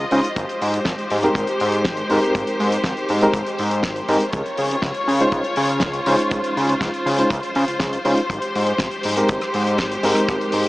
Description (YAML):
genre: nu-disco, nu disco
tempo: 121 BPM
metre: 4/4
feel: straight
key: Ab major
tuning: A4 = 440 Hz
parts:
  - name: rich symphonic string section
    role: sustained chords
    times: 0.0-10.7 s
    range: Ab3 to Eb5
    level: -23 LUFS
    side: left 1 dB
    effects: vintage 12-bit sampler grit, sidechain pumping
  - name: fat analog bass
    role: bass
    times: 0.0-10.7 s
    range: Ab1 to Db3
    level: -22 LUFS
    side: equal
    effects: none
  - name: bright reed electric piano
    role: accompaniment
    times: 0.1-10.7 s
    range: Ab3 to C5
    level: -23 LUFS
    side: equal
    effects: fast tremolo, vintage 12-bit sampler grit, analog delay
  - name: damped 70s drum kit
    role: drums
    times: 0.1-10.6 s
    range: hi-hat, rim click, snare drum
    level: -28 LUFS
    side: left 1 dB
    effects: studio ambience
  - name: kick drum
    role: drums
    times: 0.4-10.4 s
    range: none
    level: -26 LUFS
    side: equal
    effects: studio ambience
room: wet huge ambient reverb, RT60 8.5 s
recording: dreamy mix soaked in reverb, small speaker sound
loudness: -18 LUFS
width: side -19 dB against mid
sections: 0.0-10.7 A section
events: none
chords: 0.4 Abmaj7; 4.3 Dbmaj7; 8.3 Abmaj7